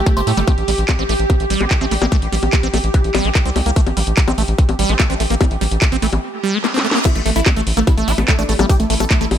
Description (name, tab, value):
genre	psychedelic trance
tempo	146 BPM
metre	4/4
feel	straight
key	unclear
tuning	A4 = 440 Hz
part	evolving wavetable pad	sustained chords	0.0-9.4 s	E4 to G4	-25 LUFS	right 2 dB	phaser, built-in reverb, sidechain pumping
part	supersaw stab	melody	0.1-0.4, 7.1-9.2 s	A3 to C5	-22 LUFS	equal	phaser, sidechain pumping, dub echo
part	liquid acid bass	riff	0.1-9.3 s	G3 to E4	-22 LUFS	moving between left 1 dB and right 5 dB	phaser, auto-pan, vintage 12-bit sampler grit, sidechain pumping, dub echo
part	drum and bass drum kit	drums	0.1-9.4 s	bongos, crash cymbal, handclaps, hi-hat, snare drum	-21 LUFS	left 2 dB	none
part	electronic kick drum	drums	0.1-9.2 s	none	-14 LUFS	equal	none
part	round analog bass	bass	0.2-9.4 s	G1 to A2	-19 LUFS	equal	none
part	resonant blip pluck	second line	1.6-8.7 s	E3 to C4	-33 LUFS	left 3 dB	phaser, ensemble chorus, cassette tape, sidechain pumping, high-pass filter, dub echo
part	reverse cymbal	sound effects	6.4-7.1 s	none	-26 LUFS	right 5 dB	none
room	little or no reverb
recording	none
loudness	-14 LUFS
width	side -10 dB against mid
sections	0.0-7.1 A section; 7.1-9.4 B section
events	reverse cymbal 6.4-7.1; drum fill 6.6-7.1; band accent 6.9; drop 7.1-9.4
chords	0.0 Gsus2; 7.1 A5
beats	0.06 | 0.47 0.89 1.30 1.71 | 2.12 2.53 2.94 3.35 | 3.76 4.17 4.58 5.00 | 5.41 5.82 6.23 6.64 | 7.05 7.46 7.87 8.28 | 8.70 9.11